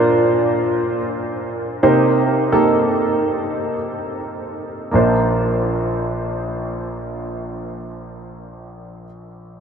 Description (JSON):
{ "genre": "pop", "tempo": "free time", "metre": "none", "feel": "none", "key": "Bb major", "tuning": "A4 = 440 Hz", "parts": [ { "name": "warm grand piano", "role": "accompaniment", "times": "0.0-9.6 s", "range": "Bb1 to C5", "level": "-17 LUFS", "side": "right 1 dB", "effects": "lush chorus" } ], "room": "wet huge ambient reverb, RT60 8.8 s", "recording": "dreamy mix soaked in reverb", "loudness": "-17 LUFS", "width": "side -7 dB against mid", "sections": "0.0-4.9 A section; 4.9-7.7 B section", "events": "none", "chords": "0.0 Bbadd9; 1.8 Cm7; 4.9 Bbadd9" }